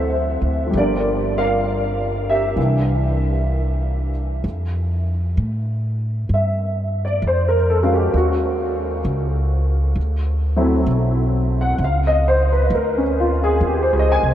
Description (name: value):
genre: jazz ballad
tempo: 65 BPM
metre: 4/4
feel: swing 66% on 8ths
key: F major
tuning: A4 = 439 Hz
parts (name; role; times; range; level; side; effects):
- warm grand piano; accompaniment; 0.0-14.3 s; E3 to Ab5; -19 LUFS; equal; ensemble chorus
- upright bass; bass; 0.0-14.3 s; G1 to A2; -20 LUFS; equal; none
room: moderate huge ambient reverb, RT60 7.5 s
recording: dreamy mix soaked in reverb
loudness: -17 LUFS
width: side -11 dB against mid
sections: 0.0-4.4 A section; 4.4-14.3 B section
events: none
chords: 0.0 D7; 0.7 Gm7; 2.6 C7; 4.4 Fadd9; 8.1 Ebm11; 10.0 D9; 11.8 Dbmaj9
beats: | 0.72 1.64 2.57 3.50 | 4.43 5.36 6.29 7.21 | 8.13 9.05 9.96 10.88 | 11.79 12.71 13.62